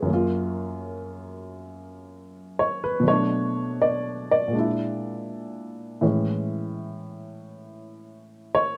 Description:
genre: solo jazz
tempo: 81 BPM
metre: 4/4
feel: swing 66% on 8ths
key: unclear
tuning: A4 = 440 Hz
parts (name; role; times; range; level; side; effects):
- dark baby grand piano; solo; 0.0-8.8 s; F#2 to D5; -27 LUFS; equal; none
room: light reverb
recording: dark, warm production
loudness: -25 LUFS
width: mono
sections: 0.0-8.8 A section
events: grand piano solo 0.0-8.8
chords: 0.1 F#maj7; 3.1 Bm7; 4.5 A#7#11; 6.0 Amaj7

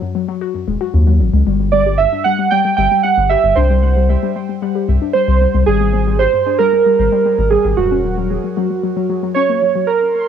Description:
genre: IDM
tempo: 114 BPM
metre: 4/4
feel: straight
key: unclear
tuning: A4 = 440 Hz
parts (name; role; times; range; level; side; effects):
- warbly dusty pluck; arpeggios; 0.0-9.9 s; Gb2 to G4; -19 LUFS; left 12 dB; chorus, cassette tape, tape echo
- round analog bass; bass; 0.7-8.4 s; Eb1 to Eb2; -15 LUFS; equal; none
- warbly lo-fi synth keys; melody; 1.7-10.3 s; Gb4 to G5; -14 LUFS; right 7 dB; chorus, cassette tape, tape echo
- flickering grainy texture; texture; 10.1-10.3 s; C6; -32 LUFS; right 4 dB; built-in reverb, cassette tape
room: moderate studio reverb, RT60 0.5 s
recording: home recording on cassette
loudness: -12 LUFS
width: side -8 dB against mid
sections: 0.0-9.9 A section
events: none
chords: 0.0 Ebm; 1.5 G5; 3.6 C5; 5.7 Abmaj7sus2; 7.8 Ebm7

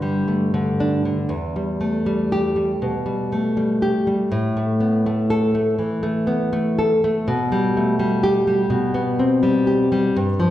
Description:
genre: romantic piece for solo classical guitar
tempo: 81 BPM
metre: 4/4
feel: uneven beats, rubato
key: G major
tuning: A4 = 440 Hz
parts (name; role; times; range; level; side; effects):
- nylon-string guitar; solo; 0.0-10.5 s; E2 to A4; -18 LUFS; equal; none
room: wet recital hall reverb, RT60 1.6 s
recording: recorded in a church or concert hall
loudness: -18 LUFS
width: side -13 dB against mid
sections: 0.0-10.5 A section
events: none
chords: 0.0 G5; 1.3 Em; 4.3 A5; 7.3 G/B

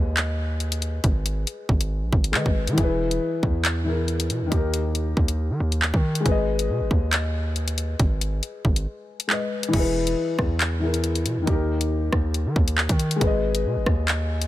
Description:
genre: hip hop, drill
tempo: 138 BPM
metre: 4/4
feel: half-time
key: G# harmonic minor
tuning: A4 = 440 Hz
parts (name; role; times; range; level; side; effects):
- dark concert grand piano; accompaniment; 0.0-14.5 s; D#3 to D#5; -27 LUFS; left 3 dB; low-pass filter
- hard-hitting 808-style bass; bass; 0.0-14.5 s; E1 to D#3; -25 LUFS; equal; none
- drill drum kit; drums; 0.2-14.5 s; crash cymbal, handclaps, hi-hat, kick drum, rim click; -24 LUFS; equal; none
room: little or no reverb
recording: none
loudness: -21 LUFS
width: side -14 dB against mid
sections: 0.0-9.7 A section; 9.7-14.5 B section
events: break 8.9-9.7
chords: 0.0 G#m; 2.8 E; 4.5 D#; 6.3 G#m; 9.7 E; 11.5 D#; 13.2 G#m

